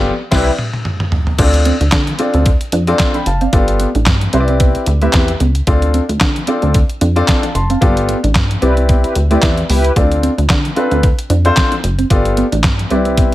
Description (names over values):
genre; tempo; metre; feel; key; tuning
early-eighties boogie funk; 112 BPM; 4/4; swing 56% on 16ths; D dorian; A4 = 440 Hz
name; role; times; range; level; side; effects
dark concert grand piano; accompaniment; 0.0-13.3 s; B3 to C6; -16 LUFS; left 2 dB; none
plucky analog bass; bass; 0.0-13.3 s; F#1 to D3; -15 LUFS; equal; none
mellow synth brass; second line; 0.3-0.5, 8.6-9.9 s; E4 to B4; -20 LUFS; equal; chorus
detuned 8-bit digital drum machine; drums; 0.3-13.3 s; crash cymbal, handclaps, hi-hat, kick drum, snare drum, toms; -15 LUFS; equal; gated reverb
mellow electric guitar; riff; 1.5-13.3 s; A3 to D4; -20 LUFS; right 3 dB; ensemble chorus
room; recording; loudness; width
little or no reverb; none; -11 LUFS; side -15 dB against mid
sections
0.0-1.4 A section; 1.4-13.3 A section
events
band accent 0.0-1.4, 7.8-10.0; drum fill 0.3-1.4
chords
0.0 Cmaj9; 1.4 Dm7; 3.5 G9; 4.3 Cmaj9; 5.7 Dm7; 7.8 G9; 8.6 Cmaj9; 10.0 Dm7; 12.1 G9